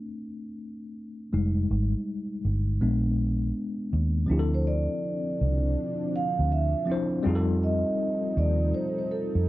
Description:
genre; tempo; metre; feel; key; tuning
lo-fi hip hop; 81 BPM; 4/4; swing 65% on 16ths; D minor; A4 = 444 Hz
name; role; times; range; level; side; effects
tine electric piano; accompaniment; 0.0-9.5 s; F3 to C5; -30 LUFS; left 2 dB; medium stereo tremolo, low-pass filter
vintage muted fingered electric bass; bass; 1.3-9.5 s; F1 to F2; -25 LUFS; equal; none
dark analog pad; sustained chords; 4.8-9.5 s; D3 to A4; -35 LUFS; right 1 dB; chorus, low-pass filter
vibraphone with soft mallets; melody; 4.5-9.4 s; A4 to F5; -30 LUFS; right 2 dB; low-pass filter
room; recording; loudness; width
light reverb; none; -24 LUFS; side -16 dB against mid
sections
0.0-4.3 A section; 4.3-9.5 B section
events
break 0.0-1.3; tine electric piano solo 0.0-4.3; filter sweep on tine electric piano 0.0-4.3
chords
0.0 Amadd11; 1.3 Fm9; 2.8 Bb7b9; 4.3 Dm9; 7.2 F9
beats
0.58 | 1.32 2.06 2.81 3.55 | 4.29 5.03 5.77 6.51 | 7.25 7.99 8.73 9.47

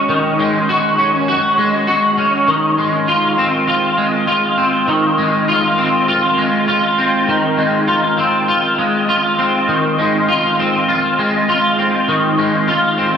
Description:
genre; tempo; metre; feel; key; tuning
dream pop; 100 BPM; 4/4; straight; unclear; A4 = 442 Hz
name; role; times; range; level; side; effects
electric guitar at the edge of break-up; solo; 0.0-13.2 s; Eb3 to Gb4; -12 LUFS; equal; ensemble chorus, dub echo
room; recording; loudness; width
wet spring reverb, RT60 2.3 s; echo-heavy mix; -13 LUFS; side -7 dB against mid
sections
0.0-12.1 A section; 12.1-13.2 B section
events
none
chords
0.0 Ab7sus4/Eb; 2.5 Ab6/Eb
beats
| 0.08 0.68 1.28 1.88 | 2.48 3.08 3.68 4.28 | 4.88 5.48 6.08 6.68 | 7.28 7.88 8.48 9.08 | 9.68 10.28 10.88 11.48 | 12.08 12.68

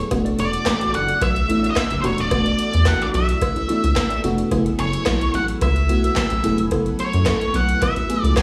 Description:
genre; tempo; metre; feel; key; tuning
early-eighties boogie funk; 109 BPM; 4/4; straight; F# minor; A4 = 440 Hz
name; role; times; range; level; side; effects
FM electric piano with soft pad layer; accompaniment; 0.0-8.4 s; A3 to A4; -26 LUFS; equal; chorus
phased string machine; sustained chords; 0.0-8.4 s; E3 to G#5; -33 LUFS; equal; ensemble chorus, phaser
mellow electric guitar; riff; 0.0-8.4 s; B3 to D5; -35 LUFS; equal; subtle chorus
rubbery square bass; bass; 0.0-8.3 s; D#1 to F#2; -24 LUFS; equal; none
booming analog drum machine; drums; 0.1-8.4 s; handclaps, hi-hat, kick drum, snare drum; -26 LUFS; equal; gated reverb
cowbell; percussion; 0.1-8.4 s; none; -28 LUFS; equal; none
octave-fuzz lead guitar; melody; 0.4-8.4 s; B#4 to G#5; -26 LUFS; equal; distortion, tape echo
room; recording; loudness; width
light reverb; small room reverb; -20 LUFS; mono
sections
0.0-8.4 A section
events
none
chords
0.1 E9sus4; 4.5 F#m11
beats
| 0.11 0.66 1.21 1.76 | 2.31 2.86 3.41 3.96 | 4.51 5.07 5.62 6.17 | 6.72 7.27 7.82 8.37

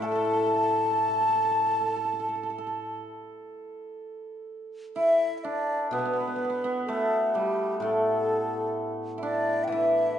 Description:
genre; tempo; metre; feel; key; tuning
chinese traditional, Chinese chamber ensemble; 56-65 BPM; 4/4; rubato; A shang mode; A4 = 440 Hz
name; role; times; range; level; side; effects
xiao; melody; 0.0-10.2 s; G4 to A5; -27 LUFS; left 1 dB; none
hammered dulcimer; second line; 0.0-10.2 s; G3 to A4; -29 LUFS; right 1 dB; none
hammered dulcimer; accompaniment; 0.0-10.2 s; A2 to E3; -32 LUFS; left 1 dB; none
room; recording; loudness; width
wet recital hall reverb, RT60 1.5 s; nothing above 10.9 kHz; -24 LUFS; side -9 dB against mid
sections
0.0-4.0 A section; 4.0-10.2 B section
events
none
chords
none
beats
| 0.02 0.98 1.95 2.96 | 3.99 4.97 5.94 6.89 | 7.83 8.77 9.71

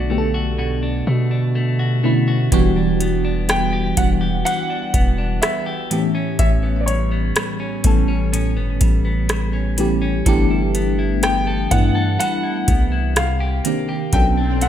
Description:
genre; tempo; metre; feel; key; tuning
contemporary R&B; 62 BPM; 4/4; straight; unclear; A4 = 440 Hz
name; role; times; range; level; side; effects
warm baby grand piano; melody; 0.0-14.7 s; C#5 to G5; -24 LUFS; left 2 dB; ping-pong delay
FM electric piano with auto-pan; accompaniment; 0.0-14.7 s; D3 to A4; -22 LUFS; equal; phaser
clean electric guitar; arpeggios; 0.0-14.7 s; A2 to A4; -26 LUFS; left 1 dB; spring reverb, ping-pong delay
long sustained 808-style bass; bass; 0.0-14.7 s; E1 to B2; -20 LUFS; equal; none
booming analog drum machine; drums; 2.5-14.7 s; hi-hat, kick drum, rim click; -19 LUFS; equal; none
swell; sound effects; 14.3-14.7 s; none; -25 LUFS; left 3 dB; none
room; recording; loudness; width
light reverb; none; -16 LUFS; side -10 dB against mid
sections
0.0-14.7 A section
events
swell 14.3-14.7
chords
0.0 Bm7; 2.5 Em7; 5.9 A9; 10.3 G69; 13.2 Cm7; 14.1 Bm7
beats
0.58 1.55 | 2.52 3.49 4.46 5.42 | 6.39 7.36 8.33 9.29 | 10.26 11.23 12.20 13.16 | 14.13

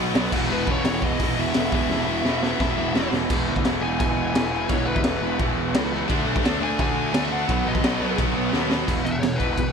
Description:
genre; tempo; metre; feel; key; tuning
punk rock; 172 BPM; 4/4; straight; E mixolydian from 3.3 s; A4 = 440 Hz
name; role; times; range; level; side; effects
distorted electric guitar; riff; 0.0-9.7 s; E2 to D4; -27 LUFS; right 6 dB; distortion
scooped high-gain guitar; riff; 0.0-3.1, 6.1-8.9 s; E2 to D4; -31 LUFS; equal; distortion
tight distorted guitar; riff; 0.0-9.7 s; E2 to D4; -28 LUFS; left 10 dB; distortion
fuzz picked electric bass; bass; 0.0-9.7 s; E1 to D#2; -29 LUFS; equal; overdrive
raw garage drum kit; drums; 0.1-9.7 s; crash cymbal, hi-hat, kick drum, snare drum; -25 LUFS; equal; none
high-gain lead guitar; melody; 0.5-9.7 s; B4 to G#5; -29 LUFS; left 3 dB; distortion
room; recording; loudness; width
little or no reverb; none; -20 LUFS; side -6 dB against mid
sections
0.0-3.3 A section; 3.3-8.9 B section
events
drum fill 1.9-3.3, 8.5-8.9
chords
0.3 E5; 3.3 E; 6.1 D5; 7.5 B; 8.9 E5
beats
0.15 | 0.50 0.85 1.20 1.55 | 1.90 2.25 2.60 2.95 | 3.30 3.65 4.00 4.35 | 4.70 5.04 5.39 5.74 | 6.09 6.44 6.79 7.14 | 7.48 7.83 8.18 8.53 | 8.88 9.23 9.58

